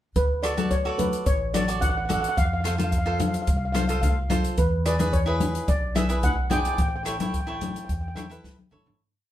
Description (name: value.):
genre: calypso.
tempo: 109 BPM.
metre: 4/4.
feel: straight.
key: unclear.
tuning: A4 = 440 Hz.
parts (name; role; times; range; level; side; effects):
steel pan; melody; 0.2-8.3 s; B4 to G5; -28 LUFS; equal; none.
upright bass; bass; 0.2-9.0 s; A1 to F2; -28 LUFS; equal; none.
open jazz drum kit; drums; 0.2-9.0 s; hi-hat, kick drum, rim click, snare drum, toms; -27 LUFS; equal; none.
cavaquinho; accompaniment; 0.4-9.0 s; E4 to D5; -30 LUFS; right 2 dB; none.
congas; percussion; 0.6-9.0 s; none; -28 LUFS; left 3 dB; none.
room: wet studio reverb, RT60 0.6 s.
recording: heard from further back in the room.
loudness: -22 LUFS.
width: side -12 dB against mid.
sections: 0.2-9.0 verse.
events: fade-out 6.8-9.0; drum fill 8.3-9.0.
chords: 0.2 D; 2.4 F; 4.6 E7; 6.8 A.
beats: | 0.16 0.72 1.27 1.82 | 2.38 2.93 3.48 4.03 | 4.58 5.13 5.69 6.24 | 6.79 7.34 7.89 8.45.